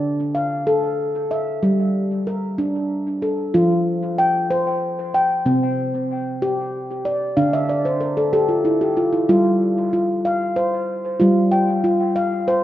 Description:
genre	world meditative, meditative tuned percussion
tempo	63 BPM (dotted quarters)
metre	6/8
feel	straight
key	unclear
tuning	A4 = 436 Hz
part	handpan	solo	0.0-12.6 s	C3 to G5	-17 LUFS	equal	dub echo
room	wet echo chamber reverb, RT60 1.7 s, studio reverb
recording	echo-heavy mix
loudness	-17 LUFS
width	side -13 dB against mid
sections	0.0-9.3 A section; 9.3-12.6 B section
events	handpan fill 7.4-9.3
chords	0.0 Dm; 1.6 Gm; 3.5 F; 5.5 C5; 7.4 D5; 9.3 F5/G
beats	0.67 | 1.63 2.59 | 3.54 4.50 | 5.46 6.42 | 7.38 8.34 | 9.29 10.25 | 11.21 12.17

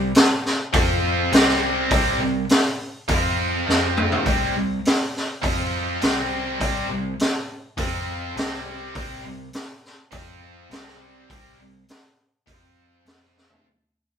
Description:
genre	blues rock power trio and southern rock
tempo	102 BPM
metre	4/4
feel	straight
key	unclear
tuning	A4 = 440 Hz
part	tight distorted guitar	riff	0.0-13.6 s	C3 to F4	-24 LUFS	equal	distortion
part	vintage muted picked electric bass	bass	0.0-13.6 s	C2 to F2	-31 LUFS	equal	none
part	raw garage drum kit	drums	0.1-13.6 s	hi-hat, kick drum, snare drum, toms	-20 LUFS	equal	none
room	light reverb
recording	band playing live in one room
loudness	-19 LUFS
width	side -8 dB against mid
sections	0.0-13.6 A section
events	fade-out 0.0-13.6; drum fill 3.7-4.3, 13.4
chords	0.0 C5; 0.7 F5; 1.3 C5; 3.1 F5; 4.3 C5; 5.4 F5; 6.0 C5; 7.8 F5; 8.4 C5; 10.1 F5; 10.7 C5; 12.5 F5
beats	0.16 0.74 1.33 | 1.92 2.50 3.09 3.67 | 4.26 4.85 5.43 6.02 | 6.61 7.19 7.78 8.36 | 8.95 9.54 10.12 10.71 | 11.30 11.88 12.47 13.06

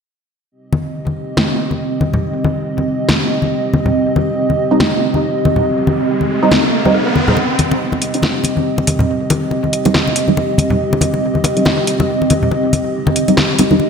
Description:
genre	deep dubstep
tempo	140 BPM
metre	4/4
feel	swing 57% on 16ths, half-time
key	C minor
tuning	A4 = 440 Hz
part	dark analog pad	sustained chords	0.9-13.9 s	C4 to Eb5	-17 LUFS	right 1 dB	chorus
part	congas	percussion	0.7-13.9 s	none	-18 LUFS	left 2 dB	dub echo
part	deep house drum kit	drums	1.4-13.7 s	hi-hat, rim click, snare drum	-19 LUFS	equal	overdrive, high-pass filter on snare, high-pass filter on hats, high-pass filter on room
part	riser	sound effects	5.3-7.4 s	none	-21 LUFS	right 1 dB	none
part	filtered dub chord stab	stabs	4.7-13.8 s	G3 to Eb4	-18 LUFS	right 2 dB	phaser, lush chorus, dub echo
room	wet lush hall reverb, RT60 1.9 s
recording	dreamy mix soaked in reverb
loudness	-13 LUFS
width	side -6 dB against mid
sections	0.5-7.4 A section; 7.4-13.9 B section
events	riser 5.3-7.4; drum fill 6.9-7.4; build-up 7.4-13.9; filter sweep on synth stab 7.4-13.9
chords	0.5 Cm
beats	| 0.52 0.95 1.38 1.80 | 2.23 2.66 3.09 3.52 | 3.95 4.38 4.80 5.23 | 5.66 6.09 6.52 6.95 | 7.38 7.80 8.23 8.66 | 9.09 9.52 9.95 10.38 | 10.80 11.23 11.66 12.09 | 12.52 12.95 13.38 13.80

